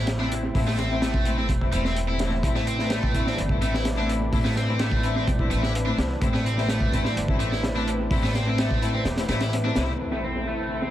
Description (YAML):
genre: breakbeat, breaks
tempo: 127 BPM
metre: 4/4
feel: straight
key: A minor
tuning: A4 = 440 Hz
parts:
  - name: lush unison pad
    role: sustained chords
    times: 0.0-10.9 s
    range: A2 to B4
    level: -33 LUFS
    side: equal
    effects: chorus, vintage 12-bit sampler grit, sidechain pumping
  - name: scooped high-gain guitar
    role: riff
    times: 0.0-10.9 s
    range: G3 to E4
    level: -31 LUFS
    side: equal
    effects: distortion, low-pass filter, analog delay
  - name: upright bass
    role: bass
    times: 0.0-9.9 s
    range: E1 to C2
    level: -27 LUFS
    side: equal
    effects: none
  - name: crunchy breakbeat drum kit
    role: drums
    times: 0.1-10.9 s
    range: hi-hat, kick drum, snare drum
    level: -26 LUFS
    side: equal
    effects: low-pass filter on kick, low-pass filter on cymbals, low-pass filter on hats, low-pass filter on snare, low-pass filter on room, analog delay
  - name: rich studio string section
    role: stabs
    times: 0.2-10.9 s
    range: A3 to E4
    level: -29 LUFS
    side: left 2 dB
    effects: vintage 12-bit sampler grit, low-pass filter, analog delay
  - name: impact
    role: sound effects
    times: 10.0-10.9 s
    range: none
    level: -34 LUFS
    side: right 1 dB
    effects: none
room: light reverb, small room ambience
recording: echo-heavy mix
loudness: -22 LUFS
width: side -12 dB against mid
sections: 0.0-10.0 A section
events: impact 10.0-10.9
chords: 0.0 Am